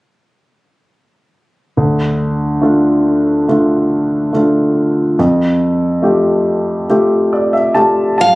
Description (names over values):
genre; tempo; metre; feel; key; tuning
folk; 70 BPM; 4/4; straight; D minor; A4 = 440 Hz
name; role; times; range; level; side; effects
warm concert grand piano; accompaniment; 1.8-8.4 s; D2 to A5; -11 LUFS; equal; none
picked steel-string acoustic guitar; melody; 8.2-8.4 s; F5; -8 LUFS; right 1 dB; none
room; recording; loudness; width
moderate large studio reverb, RT60 0.9 s; recorded on a phone in the room, studio ambience; -11 LUFS; side -20 dB against mid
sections
1.8-8.4 A section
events
none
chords
1.8 Dm; 5.2 Fadd9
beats
| 1.76 2.62 3.48 4.33 | 5.18 6.03 6.88 7.74